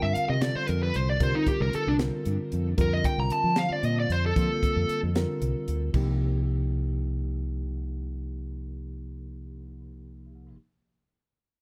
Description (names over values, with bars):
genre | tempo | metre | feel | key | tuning
electric jazz fusion | 76 BPM (dotted quarters) | 6/8 | straight | C minor | A4 = 441 Hz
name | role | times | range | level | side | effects
smooth overdriven lead guitar | melody | 0.0-5.0 s | D4 to Bb5 | -31 LUFS | equal | tape echo
tine electric piano | accompaniment | 0.0-10.6 s | C3 to C5 | -35 LUFS | equal | none
fretless electric bass | bass | 0.0-10.6 s | C2 to F3 | -31 LUFS | equal | none
crisp fusion drum kit | drums | 0.2-6.1 s | crash cymbal, hi-hat, kick drum, snare drum | -32 LUFS | equal | none
room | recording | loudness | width
little or no reverb | none | -27 LUFS | mono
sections
0.0-5.9 A section; 5.9-9.1 B section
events
lead electric guitar solo 0.0-5.9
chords
0.0 C13sus4; 2.8 Fsus24; 5.9 Cm